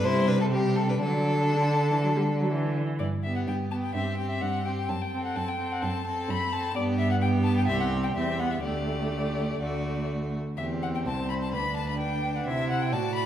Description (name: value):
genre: quick classical-period movement for string quartet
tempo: 127 BPM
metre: 4/4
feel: rubato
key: G major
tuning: A4 = 440 Hz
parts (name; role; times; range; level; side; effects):
- clear violin; melody; 0.0-13.3 s; C4 to B5; -32 LUFS; left 3 dB; none
- clear violin; second line; 0.0-13.3 s; F#4 to D5; -32 LUFS; left 1 dB; none
- clear viola; accompaniment; 0.0-13.3 s; D3 to F#4; -31 LUFS; right 1 dB; none
- clear cello; bass; 0.0-13.3 s; C2 to D3; -29 LUFS; right 1 dB; none
room: wet recital hall reverb, RT60 1.5 s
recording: heard from further back in the room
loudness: -25 LUFS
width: side -10 dB against mid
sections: 0.0-3.0 A section; 3.0-13.3 B section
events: none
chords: 0.0 C5; 1.0 D; 3.0 G; 4.0 C5/G; 4.9 F#dim; 6.8 G; 7.7 C; 8.6 Dsus4; 10.6 C/E; 11.5 Bm/D; 12.5 Am/C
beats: 0.04 0.52 | 1.01 1.52 2.03 2.52 | 3.01 3.48 3.95 4.43 | 4.90 5.37 5.83 6.30 | 6.76 7.22 7.69 8.16 | 8.64 9.12 9.61 10.10 | 10.58 11.06 11.53 12.00 | 12.47 12.93